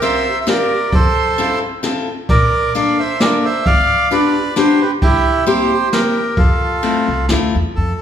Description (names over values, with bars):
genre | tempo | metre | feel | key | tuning
musette waltz | 132 BPM | 3/4 | straight | F major | A4 = 442 Hz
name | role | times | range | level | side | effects
bandoneon | melody | 0.0-8.0 s | E4 to F5 | -16 LUFS | right 2 dB | none
picked steel-string acoustic guitar | accompaniment | 0.0-7.6 s | A3 to Bb4 | -18 LUFS | left 3 dB | none
jazz brush drum kit | drums | 0.0-7.4 s | kick drum, ride cymbal, snare drum | -19 LUFS | equal | none
upright bass | bass | 0.9-7.9 s | G1 to F2 | -21 LUFS | equal | none
room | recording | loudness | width
wet recital hall reverb, RT60 1.4 s | recorded in a church or concert hall | -13 LUFS | side -9 dB against mid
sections
0.0-7.8 A section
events
none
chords
0.0 C7sus4; 0.9 Fmaj7; 2.3 Bbmaj7; 3.7 G7; 5.0 C7; 6.4 Fmaj7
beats
0.03 0.47 | 0.93 1.38 1.84 | 2.29 2.75 3.21 | 3.67 4.12 4.57 | 5.02 5.47 5.92 | 6.37 6.83 7.29 | 7.76